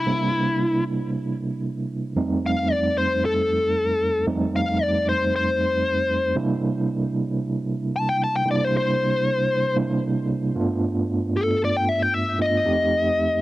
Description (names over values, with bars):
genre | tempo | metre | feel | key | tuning
blues | 114 BPM | 4/4 | straight | C mixolydian | A4 = 439 Hz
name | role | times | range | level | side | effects
smooth overdriven lead guitar | melody | 0.0-13.4 s | E4 to A5 | -22 LUFS | left 2 dB | none
overdriven tine electric piano | accompaniment | 0.0-13.4 s | F2 to G4 | -23 LUFS | right 2 dB | fast tremolo
room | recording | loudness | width
light reverb | dry, close 1970s-style studio recording | -20 LUFS | side -16 dB against mid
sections
0.0-13.4 A section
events
none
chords
0.0 C9; 2.2 F9; 6.4 C9; 10.6 G9; 12.6 F9